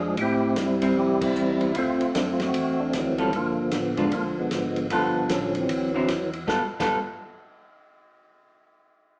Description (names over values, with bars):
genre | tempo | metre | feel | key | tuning
soul jazz organ trio | 152 BPM | 4/4 | swing 64% on 8ths | G mixolydian | A4 = 440 Hz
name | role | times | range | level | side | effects
percussive tonewheel organ | melody | 0.0-7.0 s | D3 to G#4 | -26 LUFS | equal | slow rotary speaker, chorus vibrato
mellow tonewheel organ | bass | 0.0-7.0 s | G1 to A2 | -38 LUFS | equal | chorus vibrato, slow rotary speaker
warm soul drum kit | drums | 0.2-6.9 s | crash cymbal, hi-hat, kick drum, ride cymbal, snare drum | -35 LUFS | equal | none
vintage hollow-body jazz guitar | accompaniment | 0.8-7.0 s | D3 to A4 | -30 LUFS | equal | none
room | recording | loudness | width
wet large studio reverb, RT60 1.1 s | heard from further back in the room, small speaker sound | -25 LUFS | mono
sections
0.0-6.5 A section; 6.5-8.1 B section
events
band accent 1.2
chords
0.2 Am7; 1.8 D9; 3.3 G9; 4.1 G#dim7; 4.9 G9; 5.7 D9; 6.5 G9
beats
| 0.17 0.57 0.96 1.36 | 1.75 2.14 2.54 2.93 | 3.32 3.72 4.11 4.50 | 4.90 5.29 5.69 6.08 | 6.47 6.87